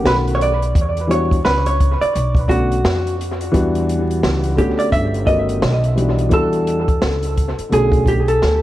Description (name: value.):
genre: hip hop, jazz-hop.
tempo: 86 BPM.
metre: 4/4.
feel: swing 61% on 16ths.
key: E dorian.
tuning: A4 = 440 Hz.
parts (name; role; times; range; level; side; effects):
vintage hollow-body jazz guitar; melody; 0.0-8.6 s; F#4 to E5; -19 LUFS; right 1 dB; analog delay.
dark grand piano; accompaniment; 0.0-8.2 s; D3 to F#5; -21 LUFS; left 1 dB; analog delay.
upright bass; bass; 0.1-8.6 s; G1 to F2; -20 LUFS; equal; none.
open jazz drum kit; drums; 0.1-8.6 s; hi-hat, kick drum, snare drum; -20 LUFS; equal; analog delay.
room: light reverb, small room reverb.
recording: echo-heavy mix, vinyl crackle.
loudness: -14 LUFS.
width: side -14 dB against mid.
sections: 0.0-8.6 A section.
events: drum fill 8.4.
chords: 0.0 B7; 0.7 Em9; 2.1 Bm7; 3.5 Em9; 4.9 Gmaj9#11; 5.6 B; 7.7 Bm7.